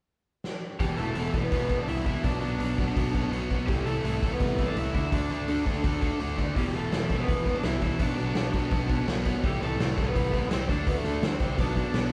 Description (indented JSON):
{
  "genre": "punk rock",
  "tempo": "167 BPM",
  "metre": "4/4",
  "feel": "straight",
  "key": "unclear",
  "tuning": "A4 = 439 Hz",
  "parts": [
    { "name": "raw garage drum kit", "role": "drums", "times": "0.4-12.0 s", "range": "hi-hat, kick drum, snare drum", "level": "-32 LUFS", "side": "equal", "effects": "none" },
    { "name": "lead guitar through a small cranked amp", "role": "melody", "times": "0.8-12.1 s", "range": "G3 to E5", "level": "-35 LUFS", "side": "equal", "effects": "overdrive" },
    { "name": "biting overdriven guitar", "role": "riff", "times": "0.8-12.1 s", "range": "E2 to D4", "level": "-37 LUFS", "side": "equal", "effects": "none" },
    { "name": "sludgy distorted guitar", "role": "riff", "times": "0.8-12.1 s", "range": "E2 to D4", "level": "-35 LUFS", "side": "equal", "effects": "overdrive" },
    { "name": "fuzz picked electric bass", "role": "bass", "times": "0.8-12.1 s", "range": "E1 to D2", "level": "-34 LUFS", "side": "equal", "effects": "overdrive" }
  ],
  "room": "light reverb",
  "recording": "band playing live in one room, lossy compression artefacts",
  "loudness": "-28 LUFS",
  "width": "mono",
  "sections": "0.8-12.1 A section",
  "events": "drum fill 0.4-0.8",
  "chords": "0.0 N.C.; 0.8 Em; 2.2 Bm; 3.7 Am/C; 4.9 D5; 6.6 Em; 8.0 Bm; 9.4 Am/C; 10.7 D5; 11.6 Bm"
}